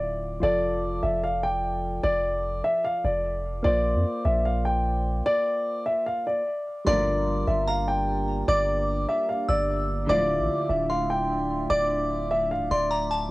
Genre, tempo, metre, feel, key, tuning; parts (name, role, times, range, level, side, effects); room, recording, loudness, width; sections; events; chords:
hip hop; 149 BPM; 4/4; half-time; G dorian; A4 = 440 Hz
dark concert grand piano; melody; 0.0-13.3 s; D5 to G5; -25 LUFS; equal
soft electric-piano-like synth keys; accompaniment; 0.0-13.3 s; D3 to D5; -32 LUFS; left 1 dB; chorus, cassette tape
long sustained 808-style bass; bass; 0.0-13.3 s; C1 to F2; -29 LUFS; equal
glassy synth bell; second line; 6.9-13.3 s; A5 to E6; -32 LUFS; equal; chorus, phaser, cassette tape, tape echo
glass harmonica; sustained chords; 6.9-13.3 s; A3 to E5; -34 LUFS; right 3 dB; stereo widening, cassette tape
warm studio string section; stabs; 6.9-7.3, 10.1-10.5 s; D2 to F3; -35 LUFS; right 2 dB; cassette tape
little or no reverb; home recording on cassette; -23 LUFS; side -20 dB against mid
0.0-6.9 A section; 6.9-13.3 B section
stop 5.3-6.9
0.4 F6; 3.6 Bbadd9; 6.9 Gm7; 10.1 Dmadd9